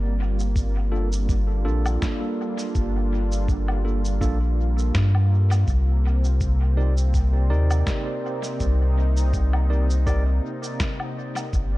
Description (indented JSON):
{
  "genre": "ambient dub",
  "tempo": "82 BPM",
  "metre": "4/4",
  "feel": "swing 55% on 16ths",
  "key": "C dorian",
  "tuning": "A4 = 440 Hz",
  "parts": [
    { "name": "warm analog pad", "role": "sustained chords", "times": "0.0-11.8 s", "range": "C3 to F4", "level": "-31 LUFS", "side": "right 1 dB", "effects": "chorus, tremolo" },
    { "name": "soft dub sub bass", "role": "bass", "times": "0.0-11.8 s", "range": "G1 to G2", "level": "-20 LUFS", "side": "equal", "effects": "none" },
    { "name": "electronic shaker, woodblock and snare drum", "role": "drums", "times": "0.4-11.7 s", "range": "none", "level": "-34 LUFS", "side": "equal", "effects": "dub echo" },
    { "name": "electronic kick drum", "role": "drums", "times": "0.6-11.7 s", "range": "none", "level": "-25 LUFS", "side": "equal", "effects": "none" },
    { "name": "tine electric piano", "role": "stabs", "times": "0.9-10.2 s", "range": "Bb3 to D5", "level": "-32 LUFS", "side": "right 2 dB", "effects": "medium stereo tremolo, dub echo" }
  ],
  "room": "little or no reverb",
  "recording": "dark, warm production, nothing above 10.4 kHz",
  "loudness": "-20 LUFS",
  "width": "side -18 dB against mid",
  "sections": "0.0-11.8 A section",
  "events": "none",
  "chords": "0.0 Gm7; 5.7 Cm7",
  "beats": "0.56 1.29 2.02 | 2.75 3.48 4.21 4.95 | 5.68 6.41 7.14 7.87 | 8.61 9.34 10.07 10.80 | 11.53"
}